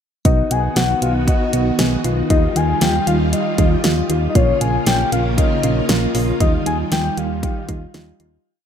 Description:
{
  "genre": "synth-pop",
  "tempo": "117 BPM",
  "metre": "4/4",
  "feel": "straight",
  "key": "unclear",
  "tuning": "A4 = 442 Hz",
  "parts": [
    { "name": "soft electric-piano-like synth keys", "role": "accompaniment", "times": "0.2-8.4 s", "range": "G3 to Ab4", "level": "-23 LUFS", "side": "right 2 dB", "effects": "chorus, shimmer reverb" },
    { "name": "soft octave-layered synth lead", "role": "melody", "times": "0.3-8.2 s", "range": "Db5 to Ab5", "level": "-22 LUFS", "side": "left 6 dB", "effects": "chorus, tremolo, shimmer reverb, ping-pong delay" },
    { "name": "string machine, violins", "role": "sustained chords", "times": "0.3-8.4 s", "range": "Db3 to F#4", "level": "-23 LUFS", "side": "equal", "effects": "ensemble chorus, shimmer reverb" },
    { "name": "solid FM bass", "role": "bass", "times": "0.3-8.4 s", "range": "Bb1 to Eb2", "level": "-20 LUFS", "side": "equal", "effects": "none" },
    { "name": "pop drum kit", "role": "drums", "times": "0.3-8.3 s", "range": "hi-hat, kick drum, snare drum", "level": "-18 LUFS", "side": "equal", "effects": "none" }
  ],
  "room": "moderate plate reverb, RT60 1.3 s",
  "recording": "bright 1980s-style digital production",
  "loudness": "-15 LUFS",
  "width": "side -8 dB against mid",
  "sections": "0.3-8.5 pre-chorus",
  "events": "fade-out 6.4-8.5",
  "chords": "0.3 B; 2.3 Ebadd9; 4.4 Bbm; 6.4 Ebadd9"
}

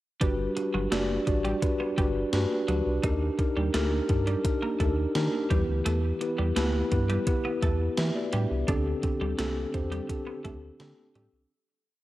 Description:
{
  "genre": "1980s-style pop",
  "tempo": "85 BPM",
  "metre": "4/4",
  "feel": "straight",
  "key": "unclear",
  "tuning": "A4 = 437 Hz",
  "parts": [
    { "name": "mellow tine electric piano", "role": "accompaniment", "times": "0.2-11.5 s", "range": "D3 to E5", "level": "-29 LUFS", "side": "equal", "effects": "medium stereo tremolo" },
    { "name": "twelve-string electric guitar", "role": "riff", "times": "0.2-11.3 s", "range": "F#3 to Eb4", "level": "-36 LUFS", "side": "right 2 dB", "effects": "analog chorus, tape echo" },
    { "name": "rubbery square bass", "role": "bass", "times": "0.2-11.5 s", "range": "F#1 to E3", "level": "-29 LUFS", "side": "equal", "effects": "none" },
    { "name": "gated 80s digital drum machine", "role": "drums", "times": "0.2-11.3 s", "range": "hi-hat, kick drum, snare drum", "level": "-30 LUFS", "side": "equal", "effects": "gated reverb, gated reverb snare, overdrive" }
  ],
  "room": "light reverb",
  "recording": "home recording on cassette",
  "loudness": "-25 LUFS",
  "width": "side -16 dB against mid",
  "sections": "0.2-11.5 verse",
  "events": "fade-out 8.7-11.5",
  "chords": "0.2 Gmaj7; 3.0 Ebmaj7; 5.5 D7sus4"
}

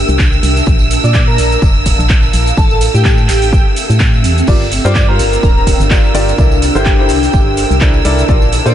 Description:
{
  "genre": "piano house",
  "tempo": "126 BPM",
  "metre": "4/4",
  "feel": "swing 55% on 16ths",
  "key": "unclear",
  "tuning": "A4 = 440 Hz",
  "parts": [
    { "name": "airy dreamy lead", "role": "melody", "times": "0.0-8.7 s", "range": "G4 to D5", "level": "-19 LUFS", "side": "right 1 dB", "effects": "chorus, diffuse ambient delay" },
    { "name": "warm studio violin section", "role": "sustained chords", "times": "0.0-8.7 s", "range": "E6", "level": "-20 LUFS", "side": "right 3 dB", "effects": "sidechain pumping" },
    { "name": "organ-like FM bass", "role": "bass", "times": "0.0-8.7 s", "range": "D1 to Bb2", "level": "-14 LUFS", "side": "equal", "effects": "sidechain pumping" },
    { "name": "granular cloud pad", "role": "texture", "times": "0.0-8.7 s", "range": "C4 to A5", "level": "-20 LUFS", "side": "equal", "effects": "built-in reverb, wide subtle chorus, sidechain pumping" },
    { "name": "house drum kit", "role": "drums", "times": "0.1-8.7 s", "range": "crash cymbal, handclaps, hi-hat, shaker", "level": "-20 LUFS", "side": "right 1 dB", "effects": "none" },
    { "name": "tambourine", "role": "percussion", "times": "0.1-8.7 s", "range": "none", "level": "-30 LUFS", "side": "right 6 dB", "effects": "none" },
    { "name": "electronic kick drum", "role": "drums", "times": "0.2-8.4 s", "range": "none", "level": "-12 LUFS", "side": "equal", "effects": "none" },
    { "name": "clear grand piano", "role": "riff", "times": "4.5-8.7 s", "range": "E4 to D5", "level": "-17 LUFS", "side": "equal", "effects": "lush chorus, sidechain pumping, diffuse ambient delay" }
  ],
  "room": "light reverb",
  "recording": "nothing above 10.7 kHz",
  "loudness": "-8 LUFS",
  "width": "side -11 dB against mid",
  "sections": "0.0-8.7 A section",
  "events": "none",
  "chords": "0.0 C13; 0.7 Bbmaj7; 2.6 Am7; 4.5 Gm7; 6.4 C13"
}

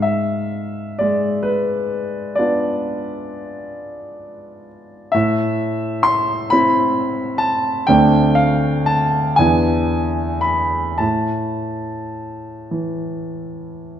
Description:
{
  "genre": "classical, romantic nocturne for solo piano",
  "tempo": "34-46 BPM (dotted quarters)",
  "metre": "12/8",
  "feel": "rubato",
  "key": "A minor",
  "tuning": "A4 = 440 Hz",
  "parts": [
    { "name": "warm concert grand piano", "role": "solo", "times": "0.0-14.0 s", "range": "D2 to C6", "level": "-17 LUFS", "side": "equal", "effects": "none" }
  ],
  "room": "moderate scoring stage reverb, RT60 1.6 s",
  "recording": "none",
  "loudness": "-16 LUFS",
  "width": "side -9 dB against mid",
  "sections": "0.0-14.0 A section",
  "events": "none",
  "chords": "0.0 G#dim7; 5.1 Am; 7.9 D5; 9.4 E7; 11.0 A5"
}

